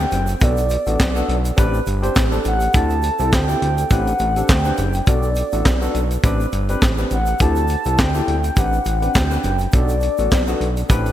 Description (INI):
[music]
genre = early-eighties boogie funk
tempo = 103 BPM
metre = 4/4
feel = swing 56% on 16ths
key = A dorian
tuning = A4 = 440 Hz
[part]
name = mellow horn-like synth lead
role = melody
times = 0.0-10.9 s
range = D5 to A5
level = -23 LUFS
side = equal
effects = chorus
[part]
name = barky tine electric piano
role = accompaniment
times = 0.0-11.1 s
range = B3 to C5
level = -24 LUFS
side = left 1 dB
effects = overdrive, lush chorus
[part]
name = fat analog bass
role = bass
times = 0.0-11.1 s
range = F#1 to D2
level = -20 LUFS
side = equal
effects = none
[part]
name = tight funk drum kit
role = drums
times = 0.1-11.1 s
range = handclaps, hi-hat, kick drum, snare drum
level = -19 LUFS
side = equal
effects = none
[part]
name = tube shaker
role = percussion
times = 0.1-11.1 s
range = none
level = -38 LUFS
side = right 7 dB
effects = none
[sound]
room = moderate lush hall reverb, RT60 1.9 s, studio reverb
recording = dreamy mix soaked in reverb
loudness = -16 LUFS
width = side -12 dB against mid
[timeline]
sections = 0.0-11.1 A section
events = none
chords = 0.4 Bm7; 1.6 Am11; 2.7 D7sus4; 3.9 Am11; 5.1 Bm7; 6.2 Am11; 7.4 D7sus4; 8.6 Am11; 9.7 Bm7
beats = | 0.41 0.99 1.58 2.16 | 2.74 3.33 3.91 4.49 | 5.07 5.66 6.24 6.82 | 7.40 7.99 8.57 9.15 | 9.73 10.31 10.90